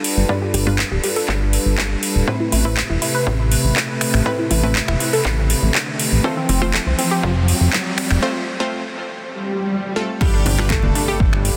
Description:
progressive house; 121 BPM; 4/4; straight; G mixolydian; A4 = 441 Hz
warm analog pad; sustained chords; 0.0-11.6 s; C3 to B5; -27 LUFS; equal; chorus, sidechain pumping
analog pluck; arpeggios; 0.0-11.6 s; C4 to D5; -29 LUFS; equal; chorus, sidechain pumping, dub echo
unison pluck; stabs; 0.0-11.6 s; G2 to C5; -28 LUFS; equal; vintage 12-bit sampler grit, sidechain pumping, dub echo
house drum kit; drums; 0.0-11.6 s; crash cymbal, finger snaps, handclaps, hi-hat; -25 LUFS; equal; overdrive, sidechain pumping on hats, sidechain pumping on cymbals
fat analog bass; bass; 0.2-11.5 s; D1 to C2; -21 LUFS; equal; tube saturation, sidechain pumping
electronic kick drum; drums; 0.3-11.3 s; -24 LUFS; equal; overdrive, high-pass filter on kick, high-pass filter on room
riser, swell and impact; sound effects; 3.9-11.6 s; -29 LUFS; equal
clear grand piano; melody; 10.2-11.4 s; G3 to A4; -30 LUFS; equal; sidechain pumping, dub echo
bright studio violin section; second line; 10.2-11.4 s; G4 to A4; -36 LUFS; equal
bongos and congas; percussion; 10.2-10.9 s; -30 LUFS; equal
light reverb; dense, heavily limited modern master; -18 LUFS; mono
0.0-10.2 A section; 10.2-11.6 B section
build-up 0.0-10.2; filter sweep on synth arpeggio sound 0.0-10.2; filter sweep on synth pluck 0.0-10.2; riser 3.9-8.2; break 8.2-10.2; swell 9.3-10.2; drop 10.2-11.6; impact 10.2-11.6
0.0 G7; 2.3 Amadd9; 6.2 F; 10.2 G7

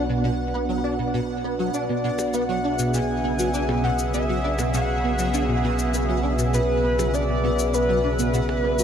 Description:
ambient, sequencer-driven space music; 100 BPM; 4/4; straight; B dorian; A4 = 436 Hz
sweeping resonant pad; sustained chords; 0.0-8.8 s; B2 to F#5; -26 LUFS; right 1 dB; chorus
plucky analog bass; riff; 0.0-8.8 s; B2 to D4; -26 LUFS; equal; ensemble chorus, ping-pong delay
warm sub bass; bass; 0.0-8.8 s; B1; -28 LUFS; equal; tube saturation
pulsing gated texture; texture; 0.0-8.8 s; F#5; -36 LUFS; right 3 dB; chorus, built-in reverb
shaker and percussion blips; percussion; 1.7-8.8 s; -35 LUFS; left 4 dB; ping-pong delay
pulse-width lead; melody; 1.8-8.8 s; B4 to G#5; -26 LUFS; left 1 dB; chorus, ping-pong delay
moderate huge ambient reverb, RT60 8.0 s; -20 LUFS; side -8 dB against mid
0.0-8.8 A section
0.0 Bm

